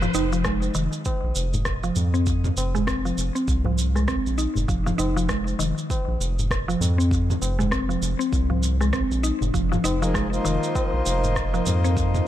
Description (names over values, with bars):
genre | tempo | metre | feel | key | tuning
organic downtempo | 99 BPM | 4/4 | swing 59% on 16ths | F minor pentatonic | A4 = 440 Hz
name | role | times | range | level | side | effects
mallet-like synth pluck | arpeggios | 0.0-12.3 s | Eb3 to Eb4 | -26 LUFS | equal | chorus, ping-pong delay, shimmer reverb
round analog bass | bass | 0.0-12.2 s | F1 to F2 | -24 LUFS | equal | tube saturation, sidechain pumping
deep house drum kit | drums | 0.0-12.2 s | rim click, shaker, toms | -30 LUFS | right 1 dB | none
tabla | percussion | 0.1-11.8 s | none | -33 LUFS | left 2 dB | none
electronic kick drum | drums | 0.5-12.1 s | none | -28 LUFS | equal | none
pedal harmonium | accompaniment | 10.0-12.3 s | F3 to C5 | -26 LUFS | left 2 dB | sidechain pumping, ping-pong delay, shimmer reverb
room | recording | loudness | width
light reverb, digital ambience | none | -21 LUFS | side -12 dB against mid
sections
0.0-12.3 A section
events
filter sweep on synth pluck 0.0-12.3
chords
0.0 Fm